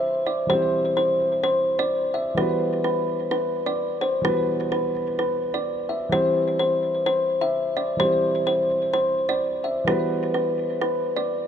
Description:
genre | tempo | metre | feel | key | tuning
hip hop | 128 BPM | 4/4 | half-time | E minor | A4 = 442 Hz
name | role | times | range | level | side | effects
kalimba | melody | 0.0-11.5 s | B4 to E5 | -21 LUFS | equal | low-pass filter, digital delay
dark concert grand piano | accompaniment | 0.0-11.5 s | E3 to C5 | -29 LUFS | right 1 dB | low-pass filter
room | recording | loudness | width
light reverb, small room reverb | none | -21 LUFS | side -8 dB against mid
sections
0.0-11.5 A section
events
none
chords
0.0 C; 2.4 Emadd9; 6.1 C; 9.9 Emadd9

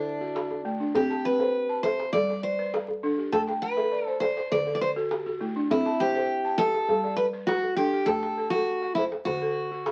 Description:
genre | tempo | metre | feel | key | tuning
west african traditional, West African string and xylophone music | 101 BPM | 4/4 | straight | C lydian | A4 = 439 Hz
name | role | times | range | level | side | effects
picked steel-string acoustic guitar | melody | 0.0-9.9 s | D4 to D5 | -29 LUFS | equal | none
balafon | arpeggios | 0.0-9.9 s | D3 to A5 | -32 LUFS | equal | none
djembe | percussion | 0.2-9.9 s | none | -32 LUFS | equal | none
room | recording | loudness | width
light reverb | very old 78 rpm record, vinyl crackle | -27 LUFS | mono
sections
0.0-9.9 A section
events
balafon fill 3.3-5.7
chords
0.0 D; 0.9 C; 2.1 G; 3.3 Am; 4.5 D; 5.7 C; 6.9 G; 8.1 Am; 9.3 D

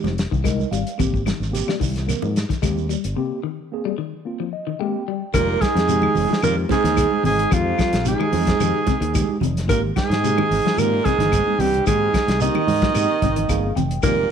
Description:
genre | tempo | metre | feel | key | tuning
afrobeat | 110 BPM | 4/4 | straight | F minor | A4 = 440 Hz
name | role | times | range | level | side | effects
mellow tine electric piano | accompaniment | 0.0-14.3 s | Ab3 to G5 | -29 LUFS | equal | medium stereo tremolo
semi-hollow electric guitar | arpeggios | 0.0-14.2 s | C3 to Ab3 | -27 LUFS | left 12 dB | none
fingered electric bass | bass | 0.0-14.2 s | F1 to Ab2 | -24 LUFS | left 1 dB | none
congas | percussion | 0.0-14.2 s | none | -29 LUFS | right 11 dB | none
warm soul drum kit | drums | 0.1-14.2 s | hi-hat, kick drum, snare drum | -24 LUFS | left 1 dB | none
shekere | percussion | 0.1-14.2 s | none | -32 LUFS | right 6 dB | none
claves | percussion | 0.4-14.2 s | none | -36 LUFS | left 16 dB | none
breathy alto saxophone | melody | 5.3-14.3 s | F4 to Eb5 | -22 LUFS | right 1 dB | none
dark trombone | second line | 5.3-14.3 s | F3 to Eb4 | -28 LUFS | right 10 dB | none
raspy baritone saxophone | second line | 5.3-14.3 s | F2 to Eb3 | -26 LUFS | right 11 dB | none
room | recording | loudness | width
light reverb | 1960s-style stereo with parts hard left and right | -18 LUFS | side -7 dB against mid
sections
0.0-5.3 A section; 5.3-14.3 B section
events
tine electric piano fill 0.2-1.0, 4.3-5.3, 12.9-14.0; break 3.2-5.3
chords
0.0 Fm7; 1.0 Abmaj7; 5.3 Fm7

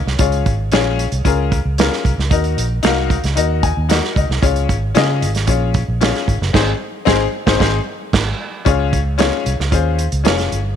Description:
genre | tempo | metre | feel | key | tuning
uptempo 1960s-style soul | 113 BPM | 4/4 | straight | Db major | A4 = 441 Hz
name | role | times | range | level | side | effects
bright upright piano | accompaniment | 0.0-10.6 s | C4 to Ab5 | -19 LUFS | left 11 dB | none
vintage muted fingered electric bass | bass | 0.0-10.7 s | F1 to Db3 | -18 LUFS | right 1 dB | none
warm soul drum kit | drums | 0.1-10.6 s | crash cymbal, hi-hat, kick drum, snare drum | -18 LUFS | right 4 dB | none
room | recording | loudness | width
light reverb, studio ambience | 1960s-style stereo | -14 LUFS | side -9 dB against mid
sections
0.0-8.7 A section; 8.7-10.8 B section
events
upright piano fill 0.0, 3.4-4.4; band accent 6.5-8.7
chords
0.2 Db; 2.3 Ebm; 4.4 Db; 6.5 Ab; 8.7 Db

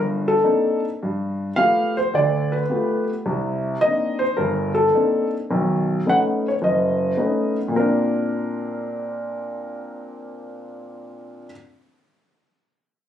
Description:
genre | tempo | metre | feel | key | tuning
solo jazz | 107 BPM | 4/4 | swing 68% on 8ths | Bb major | A4 = 441 Hz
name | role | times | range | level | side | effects
dark concert grand piano | solo | 0.0-11.5 s | F#1 to F#5 | -20 LUFS | equal | none
room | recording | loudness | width
light reverb | recorded on a phone in the room, club reverb, compression | -19 LUFS | side -10 dB against mid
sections
0.0-7.7 A section; 7.7-10.0 B section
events
none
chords
0.0 Cm9; 1.0 G9; 3.2 Cm9; 5.5 B9; 7.7 Bbadd9

